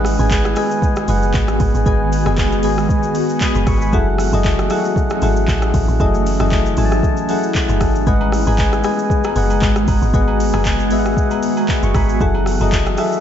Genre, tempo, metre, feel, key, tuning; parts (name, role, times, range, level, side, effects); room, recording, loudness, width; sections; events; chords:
amapiano; 116 BPM; 4/4; swing 55% on 16ths; G# phrygian; A4 = 440 Hz
soft electric-piano-like synth keys; accompaniment; 0.0-13.2 s; F#3 to D#6; -19 LUFS; left 2 dB; chorus, tremolo
ethereal airy pad; sustained chords; 0.0-13.2 s; D#3 to F#4; -22 LUFS; equal; ensemble chorus, built-in reverb, tremolo, sidechain pumping
deep log drum bass; bass; 0.0-13.0 s; F#1 to A1; -18 LUFS; equal
smooth R&B drum kit; drums; 0.0-13.2 s; handclaps, hi-hat, kick drum, rim click, shaker; -20 LUFS; equal
agogo bells; percussion; 8.2-12.7 s; -31 LUFS; right 4 dB
little or no reverb; dark, warm production, nothing above 7.7 kHz; -14 LUFS; side -9 dB against mid
0.0-13.2 A section
0.0 G#m7; 3.9 F#m7; 8.1 G#m7; 12.2 F#m7